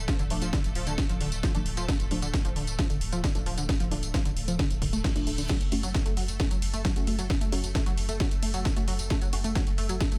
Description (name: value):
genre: driving peak-time techno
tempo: 133 BPM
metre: 4/4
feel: straight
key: F# harmonic minor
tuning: A4 = 441 Hz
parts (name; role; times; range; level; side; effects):
- filtered dub chord stab; stabs; 0.0-10.2 s; F3 to F#4; -40 LUFS; equal; phaser, ensemble chorus, cassette tape, sidechain pumping, dub echo
- saturated sub bass; bass; 0.0-10.2 s; D1 to F#1; -35 LUFS; equal; overdrive, sidechain pumping, low-pass filter
- swarming drone; drone; 0.0-10.2 s; A3 to A4; -46 LUFS; equal; built-in reverb, sidechain pumping
- tight sequenced synth; riff; 0.1-10.2 s; D3 to A3; -37 LUFS; equal; chorus, overdrive, sidechain pumping, tape echo
- electronic kick drum; drums; 0.1-10.1 s; none; -31 LUFS; equal; none
- techno drum kit; drums; 0.1-10.2 s; crash cymbal, hi-hat, ride cymbal, snare drum, tambourine; -36 LUFS; equal; none
- reverse cymbal; sound effects; 4.9-5.5 s; none; -45 LUFS; equal; none
room: little or no reverb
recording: none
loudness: -28 LUFS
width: mono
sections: 0.0-10.2 A section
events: reverse cymbal 4.9-5.5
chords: 0.0 Dm; 5.5 F#m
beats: | 0.08 0.53 0.98 1.43 | 1.89 2.34 2.79 3.24 | 3.69 4.14 4.59 5.04 | 5.49 5.95 6.40 6.85 | 7.30 7.75 8.20 8.65 | 9.10 9.55 10.01